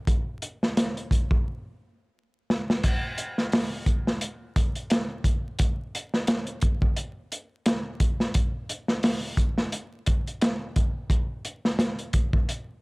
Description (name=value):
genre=trip hop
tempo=87 BPM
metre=4/4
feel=swing 56% on 16ths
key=none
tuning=none
part: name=crunchy breakbeat drum kit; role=drums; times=0.1-12.7 s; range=crash cymbal, hi-hat, kick drum, snare drum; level=-24 LUFS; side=equal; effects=none
room=little or no reverb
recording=dry, gritty hardware recording, vinyl crackle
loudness=-24 LUFS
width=side -31 dB against mid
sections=0.0-2.8 A section; 2.8-12.8 B section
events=stop 1.5-2.8; drum fill 2.5-2.8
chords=none